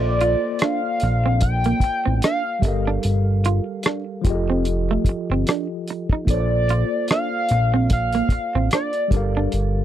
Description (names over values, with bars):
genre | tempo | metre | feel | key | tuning
R&B, neo-soul | 74 BPM | 4/4 | swing 56% on 16ths | unclear | A4 = 440 Hz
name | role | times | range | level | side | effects
hollow square lead | melody | 0.0-9.3 s | D5 to G5 | -24 LUFS | left 1 dB | chorus
tine electric piano | accompaniment | 0.0-9.8 s | F3 to C6 | -27 LUFS | left 1 dB | medium stereo tremolo
fat analog bass | bass | 0.0-9.8 s | F1 to Bb1 | -21 LUFS | equal | none
semi-hollow electric guitar | second line | 0.2-9.5 s | A3 to F4 | -24 LUFS | right 7 dB | lush chorus
cloth-damped thuddy drum kit | drums | 0.2-9.7 s | hi-hat, kick drum, rim click | -20 LUFS | equal | none
room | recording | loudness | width
little or no reverb | dry, close 1970s-style studio recording | -18 LUFS | side -11 dB against mid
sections
0.0-9.8 A section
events
none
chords
0.0 Bbmaj9; 2.6 Gm9; 4.2 F9; 6.3 Bbmaj9; 9.1 Gm9